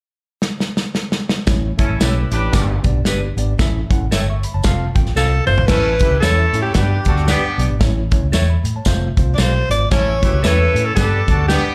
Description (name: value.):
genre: uptempo 1960s-style soul.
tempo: 114 BPM.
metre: 4/4.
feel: swing 59% on 8ths.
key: A mixolydian.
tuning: A4 = 441 Hz.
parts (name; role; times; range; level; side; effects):
natural country drum kit; drums; 0.4-11.6 s; crash cymbal, hi-hat, kick drum, snare drum, toms; -21 LUFS; equal; none.
tine electric piano; accompaniment; 1.5-11.7 s; G2 to E6; -28 LUFS; equal; overdrive.
vintage muted fingered electric bass; bass; 1.5-11.6 s; F1 to A2; -20 LUFS; equal; none.
tambourine; percussion; 1.5-11.6 s; none; -32 LUFS; equal; none.
warm horn section; second line; 1.8-11.7 s; B3 to C#5; -25 LUFS; equal; slapback echo.
electric guitar through a small old amp; stabs; 2.0-11.6 s; D4 to F5; -28 LUFS; equal; slapback echo.
breathy alto saxophone; melody; 5.2-11.6 s; G4 to D5; -22 LUFS; equal; none.
room: little or no reverb.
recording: live gig heard through the venue's PA, club reverb.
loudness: -17 LUFS.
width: mono.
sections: 0.0-1.5 A section; 1.5-5.7 B section; 5.7-11.7 C section.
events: drum fill 0.4-1.5, 5.2-5.7; tine electric piano fill 4.1-5.7.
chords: 0.0 N.C.; 1.5 A; 2.5 G; 3.6 A; 4.6 F; 5.7 A; 6.8 G; 7.8 A; 8.9 F; 9.9 A; 11.0 G.